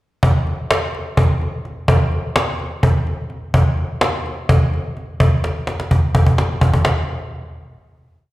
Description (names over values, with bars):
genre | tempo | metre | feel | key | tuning
progressive instrumental, progressive | 253 BPM (eighths) | 7/8 | straight | none | none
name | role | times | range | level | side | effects
cajon | drums | 0.2-7.0 s | none | -15 LUFS | equal | slapback echo
room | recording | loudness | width
wet club reverb, RT60 0.8 s | live gig heard through the venue's PA, recital hall reverb | -15 LUFS | side -17 dB against mid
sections
0.2-6.9 groove; 6.9-8.3 final hit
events
drum fill 5.4-6.9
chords
none